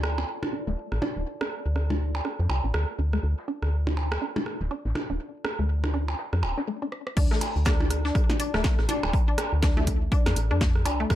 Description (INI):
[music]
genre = minimal techno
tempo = 122 BPM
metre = 4/4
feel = swing 59% on 16ths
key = D minor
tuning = A4 = 440 Hz
[part]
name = woody FM bass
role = bass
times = 0.0-11.2 s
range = D1 to F2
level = -26 LUFS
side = equal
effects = sidechain pumping
[part]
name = vintage brush drum kit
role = drums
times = 0.0-11.2 s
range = hi-hat, snare drum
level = -44 LUFS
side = left 2 dB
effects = sidechain pumping on hats, high-pass filter on hats, low-pass filter on hats, high-pass filter on snare, low-pass filter on snare, high-pass filter on room, low-pass filter on room
[part]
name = electronic rim click and percussion blips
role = percussion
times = 0.0-11.2 s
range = none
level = -31 LUFS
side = right 2 dB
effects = none
[part]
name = warbly tape-like pad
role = texture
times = 0.0-6.7 s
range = F4 to A5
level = -44 LUFS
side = equal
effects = chorus, built-in reverb, sidechain pumping
[part]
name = resonant blip pluck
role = riff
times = 0.2-11.0 s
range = A3 to D4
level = -32 LUFS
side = left 2 dB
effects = chorus, sidechain pumping, ping-pong delay
[part]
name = punchy analog drum machine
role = drums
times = 6.9-11.0 s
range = crash cymbal, hi-hat, rim click, snare drum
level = -32 LUFS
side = equal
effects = overdrive
[part]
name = electronic kick drum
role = drums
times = 7.2-11.2 s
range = none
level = -24 LUFS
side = equal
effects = overdrive
[sound]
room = little or no reverb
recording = none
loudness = -24 LUFS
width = side -13 dB against mid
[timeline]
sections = 0.0-7.2 A section; 7.2-11.2 B section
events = break 6.7-7.2; drum fill 6.9; drop 7.2-11.2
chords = 0.0 Dm; 7.2 N.C.